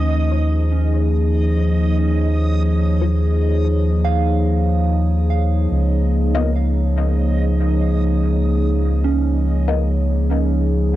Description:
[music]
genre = ambient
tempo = 72 BPM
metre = 4/4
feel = straight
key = unclear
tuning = A4 = 440 Hz
[part]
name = warbly tape-like pad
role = sustained chords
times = 0.0-11.0 s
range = F3 to Db5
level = -21 LUFS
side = left 1 dB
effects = chorus, built-in reverb, cassette tape
[part]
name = soft synth bell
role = arpeggios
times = 0.0-11.0 s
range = Db4 to F5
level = -29 LUFS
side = right 11 dB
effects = chorus, cassette tape, tape echo
[part]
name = round analog bass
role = bass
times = 0.0-11.0 s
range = Db2 to Eb2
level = -17 LUFS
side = equal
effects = tube saturation
[part]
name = backwards swelling texture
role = texture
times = 0.0-11.0 s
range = Eb5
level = -34 LUFS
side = right 3 dB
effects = built-in reverb, cassette tape
[part]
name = filtered dub chord stab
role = stabs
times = 3.0-9.8 s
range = Gb3 to Eb5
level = -28 LUFS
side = left 7 dB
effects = phaser, analog chorus, cassette tape, dub echo
[sound]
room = light reverb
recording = home recording on cassette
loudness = -16 LUFS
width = side -14 dB against mid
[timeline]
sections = 0.0-11.0 A section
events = none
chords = 0.0 Eb7sus2; 5.7 Db69

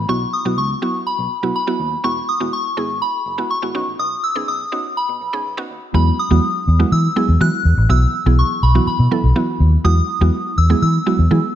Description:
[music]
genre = dance-pop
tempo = 123 BPM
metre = 4/4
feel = straight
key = E major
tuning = A4 = 437 Hz
[part]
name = soft synth bell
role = melody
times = 0.0-11.6 s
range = B5 to F#6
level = -21 LUFS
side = left 1 dB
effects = chorus
[part]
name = vintage muted fingered electric bass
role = bass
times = 0.0-11.4 s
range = E1 to E3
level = -15 LUFS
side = equal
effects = none
[part]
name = mallet-like synth pluck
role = accompaniment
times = 0.1-11.6 s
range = E3 to A4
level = -22 LUFS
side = right 3 dB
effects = chorus
[sound]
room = light reverb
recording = dark, warm production, high-pass filter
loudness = -15 LUFS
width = side -11 dB against mid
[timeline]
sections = 0.0-5.9 A section; 5.9-11.6 B section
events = build-up 0.0-5.9; drop 5.9-11.6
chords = 0.1 Bsus4; 2.0 Eadd9; 3.7 Badd9; 5.9 Eadd9; 7.9 Bsus4; 9.8 Eadd9

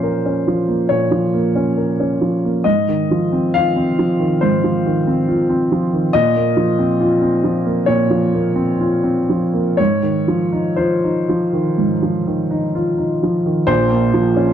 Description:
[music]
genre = neoclassical minimalist piano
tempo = 60-70 BPM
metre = 4/4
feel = rubato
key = Bb minor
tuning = A4 = 440 Hz
[part]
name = warm upright piano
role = solo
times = 0.0-14.5 s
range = Bb1 to F5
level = -14 LUFS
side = equal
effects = none
[sound]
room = moderate studio reverb, RT60 0.6 s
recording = dark, warm production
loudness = -14 LUFS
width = side -9 dB against mid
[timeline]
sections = 0.0-13.7 A section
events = none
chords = 0.0 Bbmadd9; 2.7 Fm7/Ab; 6.1 Bbmadd9; 9.8 Fm7/Ab; 13.7 Bbmadd9

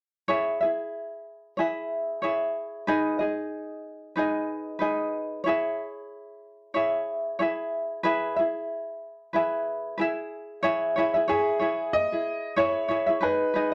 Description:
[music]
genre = acoustic pop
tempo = 93 BPM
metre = 4/4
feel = swing 55% on 16ths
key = C# minor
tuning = A4 = 441 Hz
[part]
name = tenor ukulele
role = accompaniment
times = 0.3-13.7 s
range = D#4 to E5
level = -28 LUFS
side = equal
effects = none
[part]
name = clear upright piano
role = melody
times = 11.3-13.7 s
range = G#4 to D#5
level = -28 LUFS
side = equal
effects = none
[sound]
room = light reverb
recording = dark, warm production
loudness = -27 LUFS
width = mono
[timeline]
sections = 0.3-10.6 A section; 10.6-13.7 B section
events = none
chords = 0.3 C#m; 2.9 G#m; 5.5 C#m; 8.0 E; 10.6 C#m; 13.2 G#m

